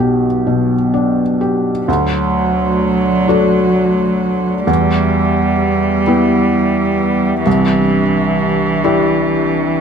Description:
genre	neoclassical piano and strings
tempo	43 BPM (dotted quarters)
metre	6/8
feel	rubato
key	unclear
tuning	A4 = 438 Hz
part	felt-muted upright piano	accompaniment	0.0-9.8 s	B1 to A4	-14 LUFS	left 1 dB	none
part	rich cello	second line	1.9-9.8 s	E3 to G3	-16 LUFS	right 3 dB	none
part	hollow soft pad	sustained chords	1.9-9.8 s	A3 to E5	-22 LUFS	left 2 dB	chorus
room	light reverb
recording	close, detailed microphones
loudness	-12 LUFS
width	side -6 dB against mid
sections	0.0-1.9 A section; 1.9-9.8 A section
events	none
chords	0.0 G/B; 1.9 D; 4.7 Em; 7.5 Cadd9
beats	0.45 | 1.88 3.29 | 4.68 6.08 | 7.46 8.85

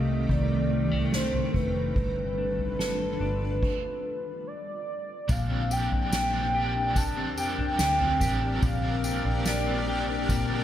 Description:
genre	dream pop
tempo	72 BPM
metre	4/4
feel	straight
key	unclear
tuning	A4 = 443 Hz
part	warm velvety synth lead	melody	0.0-10.3 s	B4 to A5	-31 LUFS	right 1 dB	chorus, analog delay
part	granular cloud pad	sustained chords	0.0-10.6 s	C3 to D5	-32 LUFS	equal	built-in reverb
part	clean electric guitar	arpeggios	0.0-10.6 s	G2 to A4	-31 LUFS	left 3 dB	lush chorus, analog delay
part	vintage muted fingered electric bass	bass	0.0-10.6 s	F1 to F2	-32 LUFS	equal	none
part	soft-mallet drum kit	drums	0.3-10.5 s	crash cymbal, kick drum, snare drum, tambourine, toms	-30 LUFS	equal	none
part	biting overdriven guitar	accompaniment	5.3-10.6 s	Bb2 to G4	-35 LUFS	right 3 dB	tremolo, analog chorus
room	moderate spring reverb, RT60 1.9 s, studio reverb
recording	echo-heavy mix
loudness	-25 LUFS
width	side -11 dB against mid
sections	0.0-5.3 A section; 5.3-10.6 B section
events	stop 3.6-5.3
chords	0.0 Cm69; 2.0 G9; 5.3 Bb69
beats	0.29 1.13 | 1.96 2.79 3.63 4.46 | 5.29 6.13 6.96 7.79 | 8.63 9.46 10.29

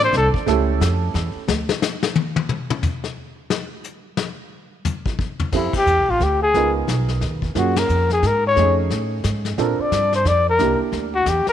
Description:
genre	jazz, small-group swing and bop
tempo	178 BPM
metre	3/4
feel	swing 62% on 8ths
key	unclear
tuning	A4 = 440 Hz
part	breathy trumpet	melody	0.0-0.3, 5.6-11.5 s	E4 to D5	-18 LUFS	left 3 dB	none
part	warm baby grand piano	accompaniment	0.0-1.4, 5.5-11.5 s	A3 to Bb4	-25 LUFS	right 11 dB	none
part	upright bass	bass	0.0-1.7, 5.4-11.5 s	A1 to Bb2	-22 LUFS	right 1 dB	none
part	vintage brush drum kit	drums	0.0-11.5 s	brushed snare drum, crash cymbal, hi-hat, kick drum, ride cymbal, snare drum, toms	-24 LUFS	left 4 dB	none
room	light reverb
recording	1960s-style stereo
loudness	-17 LUFS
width	side -10 dB against mid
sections	0.0-5.5 A section; 5.5-11.5 B section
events	trumpet solo 0.0-5.5; drum solo 1.5-5.5; band accent 5.7, 7.7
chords	0.5 A7; 1.5 N.C.; 5.5 Fmaj7; 6.5 Db13; 7.6 Gbmaj9; 8.6 F7alt; 9.6 Bbmaj7; 10.6 C7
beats	0.14 | 0.47 0.81 1.15 | 1.49 1.82 2.16 | 2.50 2.83 3.17 | 3.51 3.85 4.18 | 4.52 4.86 5.20 | 5.53 5.87 6.21 | 6.54 6.88 7.22 | 7.56 7.89 8.23 | 8.57 8.91 9.24 | 9.58 9.92 10.26 | 10.59 10.93 11.27

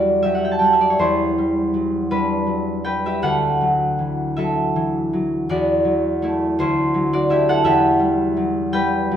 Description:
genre	classical, solo harp piece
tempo	54 BPM (dotted quarters)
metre	6/8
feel	uneven beats, rubato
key	E minor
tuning	A4 = 439 Hz
part	concert harp	solo	0.0-9.2 s	D2 to A5	-17 LUFS	equal	none
room	wet recital hall reverb, RT60 1.6 s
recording	none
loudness	-17 LUFS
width	side -9 dB against mid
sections	0.0-9.2 A section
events	none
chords	0.0 Em9; 1.0 Cmaj9/E; 3.2 Dadd9; 5.5 E9sus4; 6.6 D9; 7.7 Em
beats	| 1.00 2.12 | 3.22 4.37 | 5.50 6.58 | 7.65 8.73

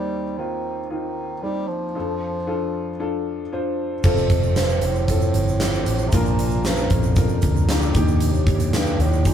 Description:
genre	piano-driven pop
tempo	115 BPM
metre	4/4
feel	straight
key	unclear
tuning	A4 = 441 Hz
part	clear bass clarinet	melody	0.0-9.3 s	Eb2 to G3	-28 LUFS	right 1 dB	none
part	warm upright piano	accompaniment	0.0-9.3 s	Eb2 to C5	-25 LUFS	left 1 dB	none
part	mellow tonewheel organ	sustained chords	4.0-9.3 s	Eb3 to D5	-32 LUFS	right 1 dB	chorus vibrato
part	vintage muted fingered electric bass	bass	4.0-9.3 s	F1 to Eb2	-22 LUFS	equal	none
part	huge arena drum kit	drums	4.0-9.3 s	crash cymbal, hi-hat, kick drum, snare drum	-21 LUFS	equal	none
part	egg shaker	percussion	4.0-9.3 s	none	-42 LUFS	right 6 dB	none
room	light reverb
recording	band playing live in one room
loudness	-19 LUFS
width	side -9 dB against mid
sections	0.0-4.0 A section; 4.0-9.3 B section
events	none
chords	0.0 Cm/Eb; 1.9 Dm/F; 4.0 F; 6.1 Bb; 8.0 Ebmaj7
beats	0.38 0.90 1.43 | 1.95 2.47 2.99 3.52 | 4.04 4.56 5.08 5.61 | 6.13 6.65 7.17 7.69 | 8.21 8.74 9.26

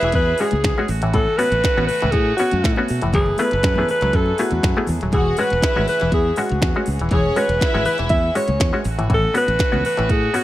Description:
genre	disco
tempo	120 BPM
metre	4/4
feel	straight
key	E major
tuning	A4 = 440 Hz
part	breathy alto saxophone	melody	0.0-10.4 s	F#4 to E5	-20 LUFS	equal	none
part	warm studio string section	second line	0.0-0.4, 5.1-8.3 s	C#4 to F#5	-26 LUFS	right 1 dB	none
part	muted clav	accompaniment	0.0-10.4 s	A2 to G#4	-24 LUFS	left 1 dB	overdrive
part	muted French horn section	sustained chords	0.0-10.4 s	E3 to B4	-29 LUFS	right 3 dB	none
part	modern bright fingered electric bass	bass	0.0-10.3 s	D#1 to B2	-22 LUFS	equal	none
part	glitchy drum kit	drums	0.0-10.4 s	hi-hat, kick drum, snare drum	-22 LUFS	equal	none
part	congas	percussion	0.1-10.3 s	none	-31 LUFS	left 4 dB	none
room	small room ambience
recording	none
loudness	-16 LUFS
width	side -14 dB against mid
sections	0.0-10.4 A section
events	none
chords	0.0 E69; 0.9 A69; 3.1 F#m11; 5.1 E69; 8.9 A69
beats	0.14 0.64 | 1.14 1.64 2.14 2.63 | 3.13 3.63 4.13 4.63 | 5.13 5.62 6.12 6.62 | 7.12 7.62 8.11 8.61 | 9.11 9.60 10.10

